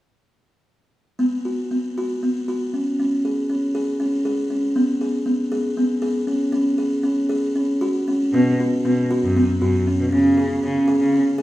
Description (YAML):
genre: contemporary instrumental, chamber music in an uneven meter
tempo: 236 BPM (eighths)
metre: 7/8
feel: straight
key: unclear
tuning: A4 = 441 Hz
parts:
  - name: buzzing kalimba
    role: arpeggios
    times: 1.2-11.4 s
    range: B3 to G#4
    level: -19 LUFS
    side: equal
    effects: none
  - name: rich cello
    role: bass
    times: 8.3-11.2 s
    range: F#2 to C#3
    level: -21 LUFS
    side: equal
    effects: none
room: moderate recital hall reverb, RT60 1.5 s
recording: recorded in a church or concert hall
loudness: -18 LUFS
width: side -15 dB against mid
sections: 1.2-8.3 A section; 8.3-11.4 B section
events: none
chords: 1.2 B5; 3.0 C#5; 4.8 G#madd11/B; 6.5 F#sus2 (rootless); 8.3 B5; 10.1 C#5